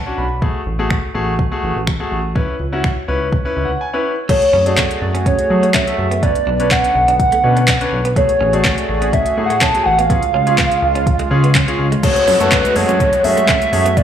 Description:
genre	dance-pop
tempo	124 BPM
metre	4/4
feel	straight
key	F# minor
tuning	A4 = 440 Hz
part	clear grand piano	accompaniment	0.0-14.0 s	A3 to B5	-22 LUFS	left 2 dB	sidechain pumping, slapback echo
part	chorused synth bass	bass	0.0-14.0 s	A1 to F#3	-19 LUFS	equal	sidechain pumping
part	smooth R&B drum kit	drums	0.4-14.0 s	crash cymbal, finger snaps, handclaps, hi-hat, kick drum, shaker, snare drum	-18 LUFS	equal	none
part	hollow clarinet-like synth lead	melody	4.3-14.0 s	B4 to A5	-15 LUFS	right 1 dB	chorus, phaser, digital delay, slapback echo
part	warm analog pad	sustained chords	4.3-14.0 s	C#3 to G#4	-23 LUFS	equal	chorus, sidechain pumping
part	direct-recorded clean electric guitar	riff	4.3-14.0 s	G#3 to D4	-26 LUFS	right 5 dB	lush chorus, slapback echo
part	downlifter	sound effects	12.0-14.0 s	none	-23 LUFS	right 1 dB	slapback echo
part	group handclap	percussion	12.5-13.6 s	none	-30 LUFS	left 2 dB	none
room	moderate digital room reverb, RT60 1.2 s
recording	live gig heard through the venue's PA, club reverb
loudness	-13 LUFS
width	side -9 dB against mid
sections	0.0-4.3 A section; 4.3-12.0 B section; 12.0-14.0 C section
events	grand piano fill 0.0-0.4, 3.3-4.3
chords	0.4 F#madd9/A; 2.4 C#m7; 4.3 F#madd9; 6.2 Bmadd9; 8.2 F#madd9/A; 10.1 C#; 12.0 F#madd9

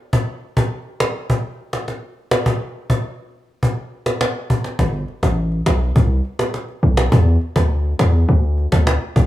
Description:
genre	dancehall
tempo	103 BPM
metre	4/4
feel	straight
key	G major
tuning	A4 = 439 Hz
part	cajon	drums	0.1-9.3 s	none	-19 LUFS	equal	none
part	hard-hitting 808-style bass	bass	4.8-9.3 s	G1 to E2	-15 LUFS	equal	none
room	small room ambience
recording	none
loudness	-16 LUFS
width	side -14 dB against mid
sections	0.0-4.8 A section; 4.8-9.3 B section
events	none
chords	none

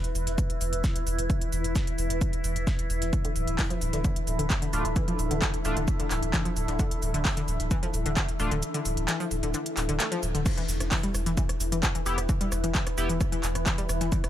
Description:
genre	driving peak-time techno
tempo	131 BPM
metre	4/4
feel	straight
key	unclear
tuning	A4 = 442 Hz
part	overtone-sweeping drone	drone	0.0-14.3 s	E3 to E4	-36 LUFS	left 2 dB	chorus, built-in reverb, sidechain pumping
part	techno drum kit	drums	0.0-14.3 s	crash cymbal, handclaps, hi-hat, rim click, shaker	-33 LUFS	equal	overdrive
part	granular cloud pad	texture	0.0-14.3 s	D4 to E5	-36 LUFS	right 1 dB	built-in reverb, sidechain pumping
part	saturated sub bass	bass	0.1-14.1 s	D1 to E1	-30 LUFS	equal	tube saturation, sidechain pumping, low-pass filter
part	breakbeat sampler-style drum kit	drums	0.2-14.2 s	hi-hat, shaker, snare drum	-41 LUFS	right 3 dB	sidechain pumping on perc, high-pass filter on perc, high-pass filter on snare, sidechain pumping on hats, high-pass filter on hats
part	electronic kick drum	drums	0.4-14.2 s	none	-28 LUFS	equal	overdrive
part	analog pluck	riff	3.2-14.2 s	D3 to A3	-33 LUFS	left 2 dB	chorus, tube saturation, cassette tape, sidechain pumping, dub echo
part	sync-sweep polysynth	stabs	4.7-8.5, 12.1-13.1 s	A3 to G4	-36 LUFS	left 1 dB	chorus, phaser, sidechain pumping, dub echo
room	little or no reverb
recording	none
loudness	-25 LUFS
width	side -12 dB against mid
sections	0.0-10.5 A section; 10.5-14.3 B section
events	kick drops out 8.6-10.5; band accent 10.0; drop 10.5-14.3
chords	0.0 E5; 3.1 D5; 10.5 E5

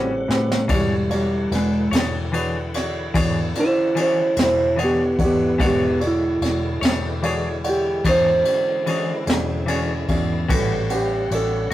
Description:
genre	slow blues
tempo	49 BPM (dotted quarters)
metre	12/8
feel	straight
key	unclear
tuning	A4 = 443 Hz
part	mellow electric guitar	melody	0.0-11.7 s	G3 to C5	-20 LUFS	right 1 dB	none
part	clear grand piano	accompaniment	0.0-11.7 s	G#3 to B5	-29 LUFS	right 2 dB	none
part	semi-hollow electric guitar	accompaniment	0.0-11.7 s	A2 to C#5	-26 LUFS	left 3 dB	harmonic tremolo
part	tonewheel organ	sustained chords	0.0-11.7 s	C#3 to F#5	-31 LUFS	left 1 dB	overdrive, chorus vibrato, slow rotary speaker
part	vintage muted fingered electric bass	bass	0.0-11.7 s	E1 to A2	-26 LUFS	left 1 dB	none
part	jazz brush drum kit	drums	0.3-11.7 s	kick drum, ride cymbal, snare drum	-25 LUFS	equal	none
room	light reverb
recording	rough rehearsal-room recording, warm saturation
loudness	-18 LUFS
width	side -14 dB against mid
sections	0.0-11.7 A section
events	drum fill 0.0-0.7; clean electric guitar solo 0.0-11.7; grand piano fill 9.3-10.5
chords	0.0 A13; 0.7 E13; 10.5 A13

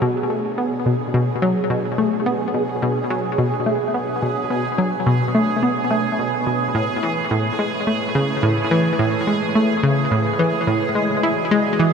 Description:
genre	ambient, sequencer-driven space music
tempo	107 BPM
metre	4/4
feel	straight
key	B dorian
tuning	A4 = 441 Hz
part	sweeping resonant pad	sustained chords	0.0-11.9 s	B2 to D5	-27 LUFS	right 1 dB	chorus, shimmer reverb
part	analog pluck	riff	0.0-11.9 s	A2 to E4	-19 LUFS	left 1 dB	chorus, ping-pong delay, shimmer reverb
part	bubbling stepped-filter texture	texture	0.0-11.9 s	G#4	-24 LUFS	right 5 dB	chorus, built-in reverb, shimmer reverb
room	wet huge ambient reverb, RT60 7.9 s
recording	dreamy mix soaked in reverb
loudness	-17 LUFS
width	side -6 dB against mid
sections	0.0-11.9 A section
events	fade-in on analog synth pad 0.0-11.9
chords	0.0 Bm7; 6.7 Amaj7; 11.2 E7

